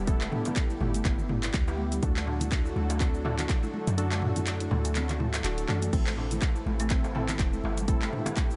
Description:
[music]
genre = afro house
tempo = 123 BPM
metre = 4/4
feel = swing 56% on 16ths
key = unclear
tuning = A4 = 439 Hz
[part]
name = warm analog pad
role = sustained chords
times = 0.0-8.6 s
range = C3 to A4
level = -40 LUFS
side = equal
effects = chorus, sidechain pumping
[part]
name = folk marimba with soft mallets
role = arpeggios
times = 0.0-8.6 s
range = E3 to A4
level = -40 LUFS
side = equal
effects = sidechain pumping, delay
[part]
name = warm analog keys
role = stabs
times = 0.0-8.6 s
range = B3 to A4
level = -39 LUFS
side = equal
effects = chorus, sidechain pumping, delay
[part]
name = warm 808-style bass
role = bass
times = 0.0-8.1 s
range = D1 to F#2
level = -33 LUFS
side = equal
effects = sidechain pumping
[part]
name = electronic kick drum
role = drums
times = 0.1-8.5 s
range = none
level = -30 LUFS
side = equal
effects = none
[part]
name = house drum kit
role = drums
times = 0.1-8.6 s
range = crash cymbal, handclaps, hi-hat, shaker, toms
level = -36 LUFS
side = equal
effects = none
[part]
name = congas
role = percussion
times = 0.2-8.6 s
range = none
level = -40 LUFS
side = equal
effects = none
[part]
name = darbuka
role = percussion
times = 0.2-8.3 s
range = none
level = -44 LUFS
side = equal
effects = none
[sound]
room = little or no reverb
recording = nothing above 11.0 kHz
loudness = -28 LUFS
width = mono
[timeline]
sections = 0.0-8.6 A section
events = kick drops out 4.0-5.9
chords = 0.0 G6; 2.0 D; 5.9 Am

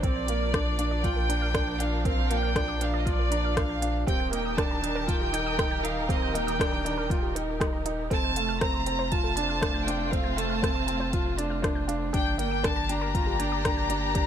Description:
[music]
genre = piano and strings electronica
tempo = 119 BPM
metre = 4/4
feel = straight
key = Bb major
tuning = A4 = 440 Hz
[part]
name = rich chamber violin section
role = melody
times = 0.0-14.3 s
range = D5 to Bb5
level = -31 LUFS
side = equal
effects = none
[part]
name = warbly dusty pluck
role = arpeggios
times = 0.0-14.3 s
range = G4 to G6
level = -38 LUFS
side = right 1 dB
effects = chorus, sidechain pumping, tape echo
[part]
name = warm concert grand piano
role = riff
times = 0.0-14.3 s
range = A3 to F4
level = -32 LUFS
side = right 2 dB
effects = tape echo
[part]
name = round analog bass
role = bass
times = 0.0-14.3 s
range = Eb1 to Bb1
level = -32 LUFS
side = equal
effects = sidechain pumping
[part]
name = electronic kick drum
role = drums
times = 0.0-14.3 s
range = none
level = -29 LUFS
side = equal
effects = overdrive
[part]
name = organic electronic drum kit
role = drums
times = 0.0-14.3 s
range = hi-hat, rim click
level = -32 LUFS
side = equal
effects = overdrive
[part]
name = dark chamber string section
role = sustained chords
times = 0.1-14.3 s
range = Eb3 to Bb4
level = -35 LUFS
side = equal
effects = none
[sound]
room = light reverb, small room ambience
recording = none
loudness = -24 LUFS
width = side -9 dB against mid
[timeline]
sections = 0.0-14.3 A section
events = none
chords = 0.0 Bb; 4.1 Eb; 8.1 F; 12.1 Gm

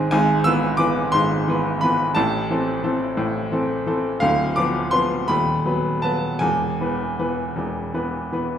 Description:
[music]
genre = classical, romantic character piece for solo piano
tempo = 51-60 BPM (dotted quarters)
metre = 6/8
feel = rubato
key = unclear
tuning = A4 = 440 Hz
[part]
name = bright upright piano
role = solo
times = 0.0-8.6 s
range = D1 to E6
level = -19 LUFS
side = equal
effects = none
[sound]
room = wet recital hall reverb, RT60 1.7 s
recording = heard from further back in the room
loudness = -19 LUFS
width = side -9 dB against mid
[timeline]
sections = 0.0-8.6 A section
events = none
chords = 0.1 E/G#; 2.2 Am; 4.2 Bdim/D; 5.3 B/D#; 6.4 E

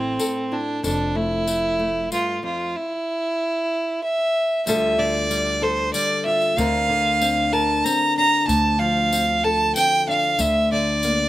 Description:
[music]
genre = acoustic folk duo or small band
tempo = 94 BPM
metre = 3/4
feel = straight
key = D minor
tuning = A4 = 440 Hz
[part]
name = clear fiddle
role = melody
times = 0.0-11.3 s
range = C4 to Bb5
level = -20 LUFS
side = right 1 dB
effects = none
[part]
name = nylon-string guitar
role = accompaniment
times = 0.0-11.3 s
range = D2 to Bb4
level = -26 LUFS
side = left 3 dB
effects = slapback echo
[part]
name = upright bass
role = bass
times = 0.0-11.3 s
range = F1 to D2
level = -26 LUFS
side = equal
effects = none
[part]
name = tambourine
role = percussion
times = 0.2-11.2 s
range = none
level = -30 LUFS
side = left 6 dB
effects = none
[sound]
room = little or no reverb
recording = recorded outdoors, with no room sound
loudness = -18 LUFS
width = side -15 dB against mid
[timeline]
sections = 0.0-4.7 A section; 4.7-11.3 B section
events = none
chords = 0.0 Am; 0.8 F; 2.8 N.C.; 4.7 Dm; 6.6 Bbadd9/D; 8.5 F6/D; 10.4 Bbmaj7#11/D

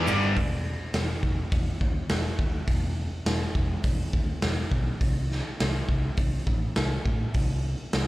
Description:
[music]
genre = garage rock duo or trio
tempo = 103 BPM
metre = 4/4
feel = straight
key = E minor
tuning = A4 = 444 Hz
[part]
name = hollow-body short-scale picked electric bass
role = bass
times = 0.0-8.1 s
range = E1 to A2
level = -29 LUFS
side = equal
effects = overdrive
[part]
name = raw garage drum kit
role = drums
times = 0.1-8.1 s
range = hi-hat, kick drum, ride cymbal, snare drum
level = -27 LUFS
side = equal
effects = none
[sound]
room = little or no reverb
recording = live gig heard through the venue's PA, club reverb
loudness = -24 LUFS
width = side -17 dB against mid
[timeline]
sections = 0.4-8.1 A section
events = none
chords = none

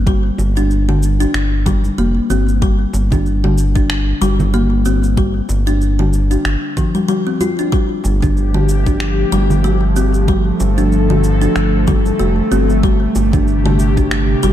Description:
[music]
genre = organic downtempo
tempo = 94 BPM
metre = 4/4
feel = swing 56% on 16ths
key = unclear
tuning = A4 = 440 Hz
[part]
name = kalimba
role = arpeggios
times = 0.0-14.5 s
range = D3 to F4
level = -18 LUFS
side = left 2 dB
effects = ping-pong delay
[part]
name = round analog bass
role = bass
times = 0.0-14.5 s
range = F1 to G1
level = -16 LUFS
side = equal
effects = sidechain pumping
[part]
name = electronic kick drum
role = drums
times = 0.1-14.1 s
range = none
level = -17 LUFS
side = equal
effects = small room ambience
[part]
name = electronic shaker and finger snaps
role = drums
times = 0.1-14.5 s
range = none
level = -26 LUFS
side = equal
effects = small room ambience
[part]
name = bongos and congas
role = percussion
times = 0.4-14.5 s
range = none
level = -25 LUFS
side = right 2 dB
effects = none
[part]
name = airy breathy pad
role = sustained chords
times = 8.1-14.5 s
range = C3 to A4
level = -19 LUFS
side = equal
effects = chorus, sidechain pumping
[sound]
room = light reverb, digital ambience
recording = dark, warm production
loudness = -12 LUFS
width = side -11 dB against mid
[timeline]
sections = 0.0-14.5 A section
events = none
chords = 0.0 G5; 7.7 Fadd9/G; 12.8 Am7/G

